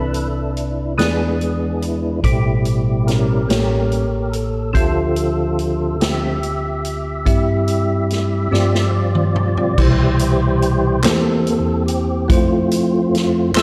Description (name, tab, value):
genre	slow gospel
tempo	48 BPM (dotted quarters)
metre	6/8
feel	straight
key	C major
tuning	A4 = 440 Hz
part	bell-like tine electric piano	accompaniment	0.0-13.6 s	A1 to E5	-21 LUFS	equal	none
part	percussive tonewheel organ	sustained chords	0.0-13.6 s	E2 to E5	-22 LUFS	equal	fast rotary speaker, chorus vibrato
part	swinging big-band drum kit	drums	0.1-13.6 s	crash cymbal, hi-hat, kick drum, snare drum, toms	-23 LUFS	equal	none
part	group handclap	percussion	11.0-13.6 s	none	-26 LUFS	equal	none
room	light reverb, small room reverb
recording	none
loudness	-18 LUFS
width	mono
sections	0.0-9.8 A section; 9.8-13.6 B section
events	tonewheel organ solo 0.0-9.8, 9.8-13.6; drum fill 8.5-9.8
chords	0.0 Cmaj9; 1.0 E7; 2.2 Am9; 3.5 A7b9; 4.8 Dm11; 7.3 C/G; 8.5 G7sus4; 9.8 Cmaj7; 11.0 C7/E; 12.3 Fmaj7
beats	0.98 | 2.24 3.50 | 4.75 6.01 | 7.27 8.53 | 9.79 11.04 | 12.30 13.56